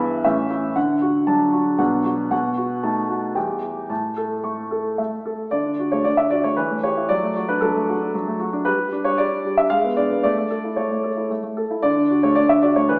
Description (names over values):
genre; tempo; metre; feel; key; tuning
classical-period piano sonatina; 114 BPM; 3/4; straight; D major; A4 = 437 Hz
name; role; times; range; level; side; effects
warm baby grand piano; solo; 0.0-13.0 s; E2 to C#6; -21 LUFS; equal; none
room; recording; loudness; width
wet recital hall reverb, RT60 1.7 s; recorded in a church or concert hall, small speaker sound; -21 LUFS; mono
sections
0.0-5.5 A section; 5.5-13.0 B section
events
none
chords
0.2 A; 0.8 D; 1.8 Bm; 2.3 B7; 3.4 Em; 3.9 A; 5.5 D; 6.6 A7/E; 7.1 D/F#; 8.7 G5; 9.7 G#dim7; 10.2 A; 11.8 D